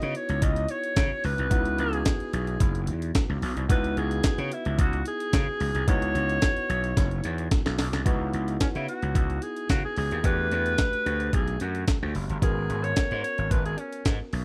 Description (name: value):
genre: early-eighties boogie funk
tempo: 110 BPM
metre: 4/4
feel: straight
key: C# minor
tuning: A4 = 440 Hz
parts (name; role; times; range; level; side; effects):
- breathy alto saxophone; melody; 0.0-14.1 s; C#4 to D#5; -32 LUFS; equal; slapback echo
- barky tine electric piano; accompaniment; 0.0-14.4 s; A3 to A#4; -37 LUFS; equal; overdrive, subtle chorus
- gritty slap bass; bass; 0.0-14.4 s; F#1 to C#3; -31 LUFS; equal; overdrive
- breakbeat sampler-style drum kit; drums; 0.0-14.4 s; handclaps, hi-hat, kick drum, snare drum; -27 LUFS; equal; none
room: little or no reverb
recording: dry, close 1970s-style studio recording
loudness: -26 LUFS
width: mono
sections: 0.0-8.1 A section; 8.1-14.4 B section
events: drum fill 7.0-8.1; alto saxophone solo 8.1-14.4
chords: 0.0 C#m11; 10.2 Em11; 12.4 G#m11